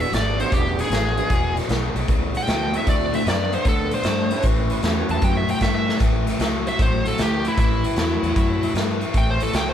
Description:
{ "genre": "electric blues shuffle", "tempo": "153 BPM", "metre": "4/4", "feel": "swing 68% on 8ths", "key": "A mixolydian", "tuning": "A4 = 440 Hz", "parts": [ { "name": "smooth overdriven lead guitar", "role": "melody", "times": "0.0-9.7 s", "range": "E4 to A5", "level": "-25 LUFS", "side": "equal", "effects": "none" }, { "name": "tonewheel organ", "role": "accompaniment", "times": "0.0-5.4 s", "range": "B3 to B4", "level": "-29 LUFS", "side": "right 6 dB", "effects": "slow rotary speaker, overdrive, chorus vibrato" }, { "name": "raw garage guitar", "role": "riff", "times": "0.0-9.7 s", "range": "E2 to B3", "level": "-25 LUFS", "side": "left 4 dB", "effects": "overdrive" }, { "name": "vintage muted fingered electric bass", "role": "bass", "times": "0.0-9.7 s", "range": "E1 to G2", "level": "-25 LUFS", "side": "right 1 dB", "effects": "none" }, { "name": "raw garage drum kit", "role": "drums", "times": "0.0-9.7 s", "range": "hi-hat, kick drum, snare drum", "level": "-23 LUFS", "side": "equal", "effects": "none" } ], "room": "moderate large studio reverb, RT60 1.1 s", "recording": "band playing live in one room", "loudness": "-18 LUFS", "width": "side -9 dB against mid", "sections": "0.0-6.0 A section; 6.0-9.7 B section", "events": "drum fill 5.8; lead electric guitar solo 6.0-9.7", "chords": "0.0 E7; 2.9 D7; 4.4 A7; 6.0 A" }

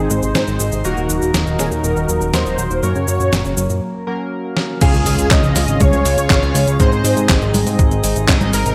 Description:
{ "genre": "italo disco", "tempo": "121 BPM", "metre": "4/4", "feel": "straight", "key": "Db major", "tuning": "A4 = 440 Hz", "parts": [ { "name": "unison lead", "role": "melody", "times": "0.0-8.7 s", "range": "Gb4 to Eb5", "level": "-24 LUFS", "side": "equal", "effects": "ensemble chorus, cassette tape, digital delay" }, { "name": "warm analog pad", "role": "sustained chords", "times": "0.0-8.7 s", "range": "Eb3 to Db5", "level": "-26 LUFS", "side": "equal", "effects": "chorus" }, { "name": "analog pluck", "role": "arpeggios", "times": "0.0-8.7 s", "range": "Bb2 to Ab3", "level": "-29 LUFS", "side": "equal", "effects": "none" }, { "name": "chorused polysynth", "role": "stabs", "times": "0.0-8.7 s", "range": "Ab2 to F5", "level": "-27 LUFS", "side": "equal", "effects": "none" }, { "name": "fat analog bass", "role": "bass", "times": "0.0-8.7 s", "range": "Eb1 to Ab2", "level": "-21 LUFS", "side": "equal", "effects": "none" }, { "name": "clean 12-bit digital drum machine", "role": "drums", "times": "0.1-8.7 s", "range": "cabasa, congas, crash cymbal, handclaps, hi-hat, snare drum", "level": "-22 LUFS", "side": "equal", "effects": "gated reverb" }, { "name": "electronic kick drum", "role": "drums", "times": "4.8-8.4 s", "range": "none", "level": "-17 LUFS", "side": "equal", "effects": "none" }, { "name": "impact", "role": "sound effects", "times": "4.8-6.8 s", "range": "none", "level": "-28 LUFS", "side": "equal", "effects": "none" } ], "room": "light reverb, digital ambience", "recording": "none", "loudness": "-16 LUFS", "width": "mono", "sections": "0.0-4.8 A section; 4.8-8.7 B section", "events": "break 3.8-4.8; drum fill 4.6; impact 4.8-6.8", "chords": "0.0 Ab; 0.8 Ebm; 2.8 Gb; 4.8 Db; 6.8 Ab" }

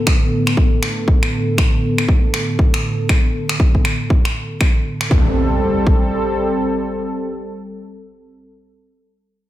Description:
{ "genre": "afro house", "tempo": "119 BPM", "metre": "4/4", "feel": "swing 59% on 16ths", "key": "A minor", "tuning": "A4 = 443 Hz", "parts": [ { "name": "warm analog pad", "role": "sustained chords", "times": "0.0-8.5 s", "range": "A2 to A4", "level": "-20 LUFS", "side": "equal", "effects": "chorus, sidechain pumping" }, { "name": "electronic finger snaps", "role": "drums", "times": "0.1-5.1 s", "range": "none", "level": "-22 LUFS", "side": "equal", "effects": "overdrive, studio reverb" }, { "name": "electronic kick drum", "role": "drums", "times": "0.1-6.0 s", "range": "none", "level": "-14 LUFS", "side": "equal", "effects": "overdrive, studio reverb" }, { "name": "impact", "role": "sound effects", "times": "5.1-8.5 s", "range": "none", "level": "-22 LUFS", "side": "equal", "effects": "none" } ], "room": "digital ambience", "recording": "none", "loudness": "-14 LUFS", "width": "side -14 dB against mid", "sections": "0.0-5.1 A section; 5.1-9.1 B section", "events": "none", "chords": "0.0 Bm7/A; 5.1 Am7" }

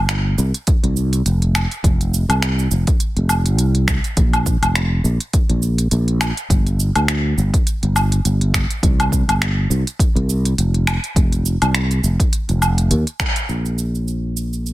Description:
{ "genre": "sunset chillout", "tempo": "103 BPM", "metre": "4/4", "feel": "swing 56% on 16ths", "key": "unclear", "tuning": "A4 = 440 Hz", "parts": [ { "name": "sustaining fretless electric bass", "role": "bass", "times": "0.0-14.7 s", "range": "F1 to Eb2", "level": "-17 LUFS", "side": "equal", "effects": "analog chorus" }, { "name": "deep house drum kit", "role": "drums", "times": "0.1-14.7 s", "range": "finger snaps, hi-hat, shaker, woodblock", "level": "-22 LUFS", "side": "equal", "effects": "soft clipping on snare" }, { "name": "electronic kick drum", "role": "drums", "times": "0.7-13.3 s", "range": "none", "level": "-17 LUFS", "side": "equal", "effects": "none" } ], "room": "little or no reverb", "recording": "dense, heavily limited modern master", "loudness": "-15 LUFS", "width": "side -16 dB against mid", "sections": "0.0-13.5 A section; 13.5-14.7 B section", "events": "band accent 13.2", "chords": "none" }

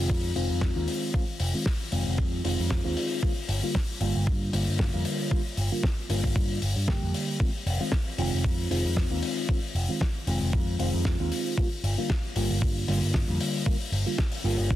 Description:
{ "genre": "nu-disco, nu disco", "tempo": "115 BPM", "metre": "4/4", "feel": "swing 54% on 16ths", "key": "F dorian", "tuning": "A4 = 440 Hz", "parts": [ { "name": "mellow reed electric piano", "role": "accompaniment", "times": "0.0-14.8 s", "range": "D3 to G4", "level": "-30 LUFS", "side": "equal", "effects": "phaser, low-pass filter, tape echo" }, { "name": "picked electric bass with an envelope filter", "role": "bass", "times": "0.0-14.8 s", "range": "F1 to G2", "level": "-28 LUFS", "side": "equal", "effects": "none" }, { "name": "electronic kick drum", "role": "drums", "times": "0.1-14.8 s", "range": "none", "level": "-27 LUFS", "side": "equal", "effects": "none" }, { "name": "damped 70s drum kit", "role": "drums", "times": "0.4-14.6 s", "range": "hi-hat, snare drum", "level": "-33 LUFS", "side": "left 3 dB", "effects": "none" } ], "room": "light reverb, small room reverb", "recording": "dense, heavily limited modern master", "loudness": "-25 LUFS", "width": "side -13 dB against mid", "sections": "0.0-14.8 A section", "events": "none", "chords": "0.0 Fm7; 3.2 Gm7; 7.4 Fm7; 11.6 Gm7" }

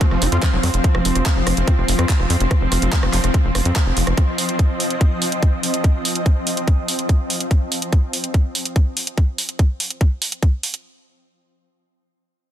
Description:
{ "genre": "psychedelic trance", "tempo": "144 BPM", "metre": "4/4", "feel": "straight", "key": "unclear", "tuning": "A4 = 439 Hz", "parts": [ { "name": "swarming drone", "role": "sustained chords", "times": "0.0-7.5 s", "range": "F3 to C4", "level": "-25 LUFS", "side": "left 1 dB", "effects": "built-in reverb, sidechain pumping" }, { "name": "screaming distorted acid line", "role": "riff", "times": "0.0-0.7 s", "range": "F3 to F4", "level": "-28 LUFS", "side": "right 3 dB", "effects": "distortion, chorus, auto-pan, sidechain pumping, tape echo" }, { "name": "electronic kick drum", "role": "drums", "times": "0.0-10.5 s", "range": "none", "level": "-16 LUFS", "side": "equal", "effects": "overdrive" }, { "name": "garage drum kit", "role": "drums", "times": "0.0-10.8 s", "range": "handclaps, hi-hat, rim click", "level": "-23 LUFS", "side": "right 2 dB", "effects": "overdrive" }, { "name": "granular cloud pad", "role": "texture", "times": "0.0-7.5 s", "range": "C4 to C6", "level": "-27 LUFS", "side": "equal", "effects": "built-in reverb, sidechain pumping" }, { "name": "tight sequencer bass", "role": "bass", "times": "0.1-4.1 s", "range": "F1 to F2", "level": "-19 LUFS", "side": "equal", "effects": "none" } ], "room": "light reverb", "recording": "dense, heavily limited modern master", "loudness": "-16 LUFS", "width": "side -11 dB against mid", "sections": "0.0-10.8 A section", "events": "none", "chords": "0.0 F5" }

